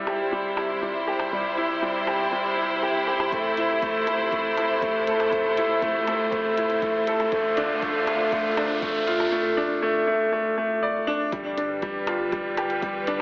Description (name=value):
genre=piano and strings electronica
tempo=120 BPM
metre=4/4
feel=straight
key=A minor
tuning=A4 = 442 Hz
part: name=bright studio string section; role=sustained chords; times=0.0-13.2 s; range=C3 to C5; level=-27 LUFS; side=equal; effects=none
part: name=bright upright piano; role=riff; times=0.0-13.2 s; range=G3 to D5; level=-23 LUFS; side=equal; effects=diffuse ambient delay
part: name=electronic percussion blips and hi-hat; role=drums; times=0.1-13.2 s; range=none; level=-36 LUFS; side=equal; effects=overdrive
part: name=electronic kick drum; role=drums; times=3.3-12.9 s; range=none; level=-41 LUFS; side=equal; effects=none
part: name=riser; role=sound effects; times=6.4-9.3 s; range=none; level=-36 LUFS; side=right 1 dB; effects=none
part: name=warm sub bass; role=bass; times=11.3-13.2 s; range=G1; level=-52 LUFS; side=equal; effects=sidechain pumping
room=wet plate reverb, RT60 2.9 s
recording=dreamy mix soaked in reverb, AM radio sound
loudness=-22 LUFS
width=side -24 dB against mid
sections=0.0-11.3 A section; 11.3-13.2 B section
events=build-up 0.0-11.3; riser 6.4-9.3; drop 11.3-13.2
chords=0.0 C; 3.3 Am; 7.3 Dm7; 11.3 G7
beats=0.32 0.82 | 1.32 1.82 2.32 2.82 | 3.32 3.82 4.32 4.82 | 5.32 5.82 6.32 6.82 | 7.32 7.82 8.32 8.82 | 9.32 9.82 10.32 10.82 | 11.32 11.82 12.32 12.82